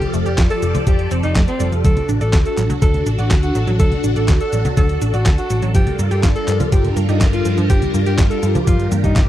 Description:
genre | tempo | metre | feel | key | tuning
italo disco | 123 BPM | 4/4 | straight | G minor | A4 = 438 Hz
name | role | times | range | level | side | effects
breathy alto saxophone | melody | 0.0-9.2 s | C4 to A4 | -24 LUFS | equal | tape echo
phased string machine | sustained chords | 0.0-9.3 s | F3 to D5 | -23 LUFS | left 1 dB | ensemble chorus, phaser
detuned 8-bit digital drum machine | drums | 0.0-9.3 s | cabasa, congas, handclaps, hi-hat, snare drum, toms | -23 LUFS | left 1 dB | none
wide unison pluck | arpeggios | 0.1-9.3 s | F3 to D5 | -27 LUFS | right 3 dB | tape echo
hollow-body short-scale picked electric bass | bass | 0.1-9.3 s | F1 to G2 | -19 LUFS | equal | none
electronic kick drum | drums | 0.4-9.3 s | none | -15 LUFS | equal | none
room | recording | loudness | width
little or no reverb | dry, close 1970s-style studio recording | -14 LUFS | side -13 dB against mid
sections
0.0-9.3 A section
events
drum fill 8.7-9.3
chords
0.0 Fadd9; 1.8 D; 5.7 Gm7

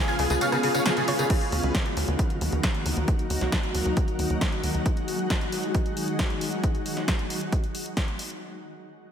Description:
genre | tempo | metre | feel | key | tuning
uplifting trance | 135 BPM | 4/4 | straight | Eb minor | A4 = 441 Hz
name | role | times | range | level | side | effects
dense compressed supersaw | melody | 0.0-1.3 s | F4 to Ab5 | -29 LUFS | right 1 dB | sidechain pumping, ping-pong delay
analog pluck | second line | 0.0-1.3 s | Ab4 to Ab5 | -32 LUFS | equal | chorus, sidechain pumping, diffuse ambient delay
liquid acid bass | arpeggios | 0.1-1.2 s | Db3 | -33 LUFS | left 2 dB | phaser, wide subtle chorus, sidechain pumping, diffuse ambient delay
punchy analog drum machine | drums | 0.1-8.4 s | crash cymbal, hi-hat, rim click, snare drum, tambourine | -31 LUFS | equal | none
tight sequencer bass | bass | 0.2-4.8 s | Db2 to Eb2 | -27 LUFS | equal | sidechain pumping
electronic kick drum | drums | 1.3-8.1 s | none | -26 LUFS | equal | none
room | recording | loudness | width
moderate lush hall reverb, RT60 1.9 s | dreamy mix soaked in reverb | -23 LUFS | side -8 dB against mid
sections
0.0-1.3 A section; 1.3-8.4 B section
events
drop 0.0-1.3; filter sweep on analog synth bass 1.3-4.9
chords
0.0 Db7; 1.3 Ebm

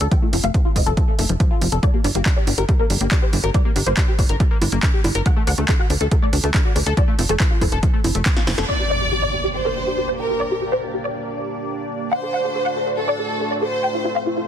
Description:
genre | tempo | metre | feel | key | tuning
uplifting trance | 140 BPM | 4/4 | straight | G minor | A4 = 436 Hz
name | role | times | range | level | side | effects
wide unison pluck | melody | 0.0-14.4 s | F4 to G5 | -25 LUFS | left 1 dB | ensemble chorus, sidechain pumping, ping-pong delay
tight sequenced synth | arpeggios | 0.0-8.6 s | F3 to Bb4 | -26 LUFS | left 4 dB | chorus, vintage 12-bit sampler grit, sidechain pumping, ping-pong delay
tight sequencer bass | bass | 0.0-8.7 s | F1 to D2 | -21 LUFS | equal | sidechain pumping
punchy analog drum machine | drums | 0.0-8.7 s | congas, handclaps, hi-hat, snare drum | -25 LUFS | right 1 dB | sidechain pumping on hats, low-pass filter on hats, low-pass filter on snare, sidechain pumping on perc, low-pass filter on perc
electronic kick drum | drums | 0.1-8.3 s | none | -18 LUFS | equal | none
rich studio violin section | second line | 8.7-14.2 s | A4 to D5 | -23 LUFS | right 1 dB | digital delay
lush unison pad | sustained chords | 9.3-14.5 s | A3 to D5 | -28 LUFS | equal | chorus, phaser, sidechain pumping
impact | sound effects | 8.7-10.4 s | none | -28 LUFS | equal | none
room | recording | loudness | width
light reverb | dense, heavily limited modern master | -17 LUFS | side -10 dB against mid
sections
0.0-8.7 A section; 8.7-14.5 B section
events
drum fill 8.3-8.7; band accent 8.6; impact 8.7-10.4; filter sweep on synth pluck 8.7-14.5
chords
0.1 F; 1.8 Gm; 5.3 D5; 7.0 F; 8.7 Gm; 12.1 D; 13.8 F

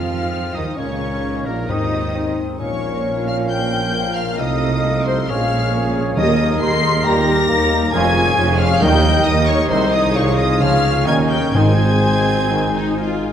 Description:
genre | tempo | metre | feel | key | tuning
classical, dramatic, fast romantic movement for symphony orchestra | 134 BPM | 4/4 | rubato | Ab major | A4 = 440 Hz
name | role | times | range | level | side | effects
warm symphonic violin section | melody | 0.0-13.2 s | Bb5 to C7 | -25 LUFS | left 2 dB | none
mellow hollow flute section | second line | 0.0-13.2 s | Bb4 to C6 | -28 LUFS | left 4 dB | none
rich symphonic violin section | second line | 0.0-13.2 s | Bb4 to C6 | -28 LUFS | left 2 dB | none
warm clarinet | second line | 0.0-13.2 s | Bb3 to Bb4 | -29 LUFS | left 2 dB | none
warm oboe | second line | 0.0-13.2 s | Bb4 to F5 | -29 LUFS | equal | none
mellow bassoon | accompaniment | 0.0-13.2 s | Bb3 to G4 | -24 LUFS | right 1 dB | none
warm symphonic viola section | accompaniment | 0.0-13.3 s | G3 to Bb4 | -27 LUFS | right 1 dB | none
dark French horn section | sustained chords | 0.0-12.7 s | G3 to F4 | -32 LUFS | left 2 dB | none
warm trombone section | sustained chords | 0.0-12.7 s | F2 to F3 | -29 LUFS | right 3 dB | none
concert harp | arpeggios | 0.0-13.3 s | Ab2 to Eb6 | -25 LUFS | left 6 dB | none
mellow trumpet section | stabs | 0.0-13.2 s | Bb4 to C6 | -26 LUFS | equal | none
dark symphonic double bass section | bass | 0.0-13.2 s | F1 to F2 | -26 LUFS | right 2 dB | none
mellow tuba | bass | 0.0-13.2 s | F1 to F2 | -24 LUFS | right 3 dB | none
rich symphonic cello section | bass | 0.0-13.2 s | C2 to F3 | -24 LUFS | right 2 dB | none
timpani | percussion | 1.7-2.3, 6.2-12.2 s | Ab2 to Eb3 | -24 LUFS | equal | none
room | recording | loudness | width
wet concert hall reverb, RT60 2.0 s | none | -15 LUFS | side -9 dB against mid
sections
0.0-13.3 A section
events
none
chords
0.0 Ab; 0.8 Eb7/Db; 1.7 Ab/Eb; 2.6 Bbm; 4.4 F7/C; 5.3 Bbm7; 6.2 Eb; 7.9 Db/F; 8.8 Eb; 9.7 Ab/C; 10.6 Db; 11.1 Eb7; 11.5 Ab

